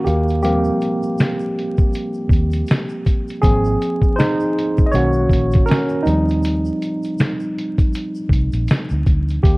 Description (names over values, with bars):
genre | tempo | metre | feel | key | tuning
lo-fi hip hop | 80 BPM | 4/4 | swing 58% on 16ths | Eb major | A4 = 440 Hz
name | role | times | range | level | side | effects
tine electric piano | accompaniment | 0.0-9.6 s | D#3 to Eb5 | -19 LUFS | equal | medium stereo tremolo, cassette tape, low-pass filter
vintage muted fingered electric bass | bass | 0.1-9.6 s | Ab1 to Eb2 | -19 LUFS | equal | transformer saturation
lo-fi sampler-style drum kit | drums | 0.1-9.6 s | finger snaps, hi-hat, kick drum, snare drum | -16 LUFS | equal | none
tube shaker | percussion | 0.1-9.4 s | none | -53 LUFS | left 4 dB | none
room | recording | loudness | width
digital ambience | worn, warbling old tape, cassette tape, vinyl crackle, warbly pitch drift | -16 LUFS | side -24 dB against mid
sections
0.0-9.4 A section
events
tine electric piano solo 0.0-9.4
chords
0.1 Eb6; 3.4 Ab69; 4.9 Bmaj9; 6.1 Eb6